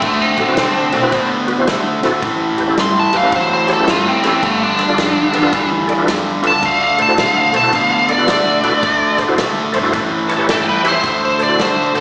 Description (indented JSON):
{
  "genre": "electric blues shuffle",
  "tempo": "109 BPM",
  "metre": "4/4",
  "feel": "swing 64% on 8ths",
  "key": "unclear",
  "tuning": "A4 = 440 Hz",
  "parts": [
    { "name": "biting lead guitar", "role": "melody", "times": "0.0-12.0 s", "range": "A3 to C6", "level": "-18 LUFS", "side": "equal", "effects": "overdrive" },
    { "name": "cranked stack guitar", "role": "riff", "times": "0.0-12.0 s", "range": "G2 to B3", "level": "-20 LUFS", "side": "equal", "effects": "overdrive, slapback echo" },
    { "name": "upright bass", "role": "bass", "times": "0.0-12.0 s", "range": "G1 to C3", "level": "-30 LUFS", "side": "equal", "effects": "none" },
    { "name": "natural country drum kit", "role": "drums", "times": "0.0-12.0 s", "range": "hi-hat, kick drum, ride cymbal, snare drum", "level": "-26 LUFS", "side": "equal", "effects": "slapback echo" },
    { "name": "tonewheel organ", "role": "accompaniment", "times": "0.4-12.0 s", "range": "C4 to A5", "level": "-22 LUFS", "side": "equal", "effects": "slow rotary speaker, overdrive, chorus vibrato, slapback echo" }
  ],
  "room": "light reverb",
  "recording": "live gig heard through the venue's PA, recital hall reverb, small speaker sound",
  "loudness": "-15 LUFS",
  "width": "mono",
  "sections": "0.0-11.0 A section",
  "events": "lead electric guitar solo 0.0-11.0; tonewheel organ fill 9.9-11.0",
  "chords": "0.0 D9; 2.2 A9; 4.4 G9; 6.6 D9; 9.9 A9; 11.0 D9",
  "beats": "| 0.03 0.58 1.13 1.68 | 2.23 2.78 3.33 3.88 | 4.43 4.98 5.53 6.08 | 6.63 7.18 7.73 8.28 | 8.84 9.39 9.94 10.49 | 11.04 11.60"
}